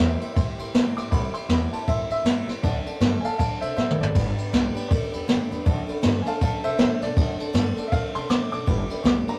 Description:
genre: rockabilly.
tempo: 159 BPM.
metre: 4/4.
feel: swing 60% on 8ths.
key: unclear.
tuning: A4 = 440 Hz.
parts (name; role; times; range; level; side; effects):
clear upright piano; melody; 0.0-9.4 s; C5 to D6; -32 LUFS; equal; slapback echo.
dark upright piano; accompaniment; 0.0-9.4 s; D5 to D6; -41 LUFS; equal; none.
picked steel-string acoustic guitar; accompaniment; 0.0-9.4 s; G2 to A4; -36 LUFS; equal; none.
upright bass; bass; 0.0-9.3 s; G1 to C3; -32 LUFS; equal; none.
jazz brush drum kit; drums; 0.2-9.3 s; crash cymbal, kick drum, ride cymbal, snare drum, toms; -25 LUFS; equal; none.
room: moderate booth ambience, RT60 0.2 s.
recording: rough rehearsal-room recording, tube saturation.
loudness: -24 LUFS.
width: mono.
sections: 0.0-9.4 A section.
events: upright piano solo 0.0-9.4; drum fill 3.8-4.1.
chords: 0.0 C; 2.6 D7; 4.1 G; 5.7 D7; 8.7 G.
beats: 0.37 0.75 | 1.12 1.50 1.88 2.26 | 2.63 3.01 3.39 3.77 | 4.15 4.52 4.90 5.28 | 5.66 6.03 6.41 6.79 | 7.17 7.54 7.92 8.30 | 8.67 9.05.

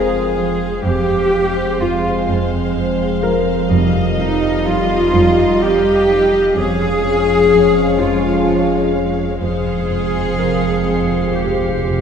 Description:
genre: cinematic, suspense film score.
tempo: 63 BPM.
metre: 3/4.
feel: straight.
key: F minor.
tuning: A4 = 440 Hz.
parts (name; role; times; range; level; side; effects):
dark studio violin section; melody; 0.0-12.0 s; F5; -30 LUFS; equal; none.
clear clarinet; second line; 0.0-12.0 s; Eb4 to Ab4; -21 LUFS; equal; none.
warm chamber violin section; second line; 0.0-12.0 s; C5 to Eb5; -27 LUFS; left 2 dB; none.
warm studio viola section; accompaniment; 0.0-12.0 s; G3 to Ab3; -24 LUFS; left 4 dB; none.
dark French horn section; sustained chords; 0.0-12.0 s; G3 to Eb4; -24 LUFS; left 1 dB; none.
dark trombone section; sustained chords; 0.0-12.0 s; F2 to F3; -26 LUFS; right 4 dB; none.
warm studio cello section; riff; 0.0-12.0 s; F2 to F3; -24 LUFS; right 2 dB; none.
dark studio double bass section; bass; 0.0-12.0 s; F2; -23 LUFS; right 4 dB; none.
warm studio cello section; bass; 0.0-12.0 s; Eb4 to Ab4; -18 LUFS; left 1 dB; none.
pure sine sub bass; drone; 0.0-12.0 s; F1; -29 LUFS; right 1 dB; none.
clear concert grand piano; texture; 0.0-12.0 s; Bb4 to C5; -27 LUFS; left 4 dB; none.
timpani; percussion; 3.7-5.1, 9.4-12.0 s; F2; -26 LUFS; left 1 dB; none.
rich studio violin section; texture; 9.4-12.0 s; C7 to Db7; -32 LUFS; right 2 dB; none.
room: wet scoring stage reverb, RT60 1.8 s.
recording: heard from further back in the room.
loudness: -13 LUFS.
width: side -7 dB against mid.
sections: 0.0-12.0 A section.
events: timpani fill 9.4-12.0.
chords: 0.0 Fmadd9; 3.7 Ebadd9/F; 6.6 Db/F; 9.4 Fmadd9.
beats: | 0.86 1.81 2.76 | 3.72 4.67 5.62 | 6.57 7.53 8.48 | 9.43 10.38 11.34.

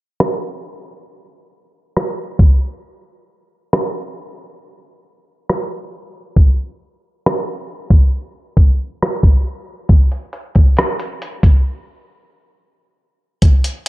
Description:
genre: R&B.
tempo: 68 BPM.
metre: 4/4.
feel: straight.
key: none.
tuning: none.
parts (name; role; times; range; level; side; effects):
dusty soul sampler-style drum kit; drums; 0.2-13.9 s; hi-hat, kick drum, rim click; -12 LUFS; equal; none.
room: little or no reverb.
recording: low-pass filter.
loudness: -14 LUFS.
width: side -18 dB against mid.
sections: 0.0-13.4 A section.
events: filter sweep 0.0-13.4; break 11.7-13.4.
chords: none.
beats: 0.19 1.07 1.95 | 2.83 3.72 4.60 5.48 | 6.36 7.25 8.13 9.01 | 9.89 10.78 11.66 12.54 | 13.42.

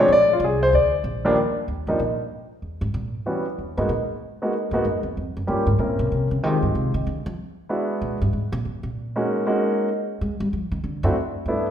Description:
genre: jazz piano trio.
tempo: 190 BPM.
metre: 4/4.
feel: swing 64% on 8ths.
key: unclear.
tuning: A4 = 440 Hz.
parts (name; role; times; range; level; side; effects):
warm grand piano; melody; 0.0-11.7 s; Eb2 to D5; -21 LUFS; equal; none.
upright bass; bass; 0.0-11.7 s; Bb1 to Ab3; -25 LUFS; equal; none.
room: wet recital hall reverb, RT60 1.3 s.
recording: recorded in a church or concert hall.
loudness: -21 LUFS.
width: side -9 dB against mid.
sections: 0.0-1.4 A section; 1.4-11.5 A section.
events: grand piano solo 0.0-1.4; upright bass solo 1.4-11.5.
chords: 0.1 Bb; 1.4 Eb; 2.6 E; 3.3 Em69; 3.9 Ab7sus2; 5.2 Gm7b5; 5.8 C7b9; 6.4 Fm9; 7.7 E9; 9.0 Gb69; 10.2 Fm9; 10.8 D.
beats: | 0.10 0.41 0.73 1.04 | 1.36 1.68 1.99 2.31 | 2.63 2.94 3.26 3.58 | 3.89 4.21 4.53 4.84 | 5.16 5.47 5.79 6.11 | 6.42 6.74 7.06 7.37 | 7.69 8.00 8.32 8.64 | 8.95 9.27 9.58 9.90 | 10.21 10.53 10.84 11.16 | 11.47.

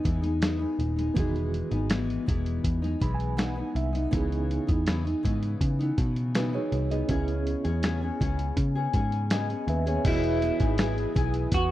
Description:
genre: indie pop, bedroom pop.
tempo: 81 BPM.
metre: 4/4.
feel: straight.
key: E major.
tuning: A4 = 440 Hz.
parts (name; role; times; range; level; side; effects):
nylon-string guitar; accompaniment; 0.0-11.7 s; C#3 to G#4; -31 LUFS; left 3 dB; lush chorus, vibrato effect.
reed electric piano; accompaniment; 0.0-11.7 s; D#3 to B5; -35 LUFS; right 5 dB; fast tremolo, cassette tape.
vintage muted picked electric bass; bass; 0.1-11.7 s; D#1 to C#3; -28 LUFS; equal; none.
lo-fi sampler-style drum kit; drums; 0.1-11.7 s; crash cymbal, hi-hat, kick drum, snare drum; -28 LUFS; equal; none.
warm analog pad; sustained chords; 10.0-11.7 s; B4 to D#6; -42 LUFS; equal; chorus.
electric guitar through a small old amp; melody; 10.1-11.7 s; E4 to F#4; -28 LUFS; right 2 dB; analog chorus.
room: little or no reverb.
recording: dry, close 1970s-style studio recording.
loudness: -24 LUFS.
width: side -14 dB against mid.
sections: 0.0-10.1 A section; 10.1-11.7 B section.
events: reed electric piano fill 2.6-4.1, 8.9-10.1.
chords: 0.0 Emaj7; 4.1 C#m9; 10.1 Emaj7.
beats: 0.42 | 1.17 1.91 2.65 3.39 | 4.13 4.87 5.61 6.35 | 7.09 7.83 8.57 9.31 | 10.05 10.79 11.53.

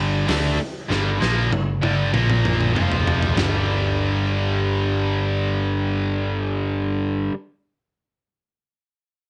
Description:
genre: hard rock.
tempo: 97 BPM.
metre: 4/4.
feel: straight.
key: unclear.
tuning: A4 = 439 Hz.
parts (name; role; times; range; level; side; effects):
distorted electric guitar; riff; 0.0-7.3 s; F2 to D4; -25 LUFS; equal; overdrive, cassette tape.
picked electric bass; bass; 0.0-7.3 s; F1 to D2; -25 LUFS; equal; none.
big rock drum kit; drums; 0.3-3.5 s; hi-hat, snare drum, toms; -26 LUFS; equal; cassette tape.
room: light reverb.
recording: home recording on cassette.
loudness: -21 LUFS.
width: mono.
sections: 0.0-3.4 A section; 3.4-5.8 B section.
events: drum fill 0.9-3.4.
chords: 0.0 G5; 2.1 Bb5; 2.8 F5; 3.4 G5.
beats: 0.28 | 0.90 1.52 2.13 2.75 | 3.37 3.98 4.60 5.21.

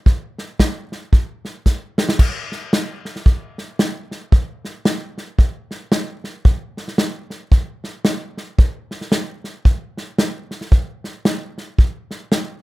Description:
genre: country.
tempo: 113 BPM.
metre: 4/4.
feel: swing 60% on 8ths.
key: none.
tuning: none.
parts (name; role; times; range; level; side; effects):
natural country drum kit; drums; 0.1-12.5 s; crash cymbal, hi-hat, kick drum, snare drum; -15 LUFS; equal; none.
room: little or no reverb.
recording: close, detailed microphones.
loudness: -18 LUFS.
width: side -19 dB against mid.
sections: 0.0-2.2 A section; 2.2-12.6 B section.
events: drum fill 1.7-2.2.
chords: none.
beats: | 0.06 0.59 1.13 1.66 | 2.19 2.73 3.26 3.79 | 4.33 4.86 5.39 5.92 | 6.46 6.99 7.52 8.06 | 8.59 9.12 9.66 10.19 | 10.72 11.25 11.79 12.32.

